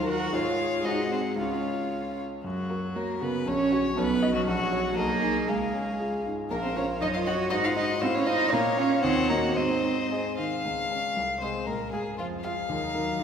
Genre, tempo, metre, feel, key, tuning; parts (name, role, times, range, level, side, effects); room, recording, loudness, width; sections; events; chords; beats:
quick classical-period movement for piano quintet; 118 BPM; 2/4; straight; F# major, Db major from 6.5 s; A4 = 440 Hz
warm violin; melody; 0.0-13.2 s; F4 to Gb5; -32 LUFS; left 5 dB
dark cello; second line; 0.0-13.2 s; F2 to Gb4; -29 LUFS; right 4 dB
dark violin; second line; 0.0-13.2 s; F4 to Gb5; -34 LUFS; left 1 dB
warm concert grand piano; accompaniment; 0.0-13.2 s; A#1 to F5; -30 LUFS; left 2 dB
warm viola; accompaniment; 0.0-13.2 s; F3 to Db5; -35 LUFS; right 3 dB
wet church reverb, RT60 2.3 s; recorded in a church or concert hall; -25 LUFS; side -7 dB against mid
0.0-2.4 A section; 2.4-10.7 B section; 10.7-13.2 A section
0.3 Db/Ab; 0.9 Ab7; 1.4 Db; 2.4 F#; 3.5 F#/A#; 4.0 B; 4.5 F#/A#; 5.0 G#m/B; 5.5 C#; 6.5 Bbm; 7.0 Ebm7/Gb; 7.5 Ab7; 8.0 F7/A; 8.5 Bbm; 9.0 Ebm7; 9.6 Ab; 10.7 Db; 11.2 Ab/C; 11.7 Db; 12.7 Ebm
| 0.34 0.85 | 1.38 1.91 | 2.44 2.96 | 3.47 3.97 | 4.47 4.97 | 5.48 6.00 | 6.51 7.02 | 7.52 8.02 | 8.53 9.04 | 9.57 10.11 | 10.65 11.16 | 11.67 12.18 | 12.70 13.20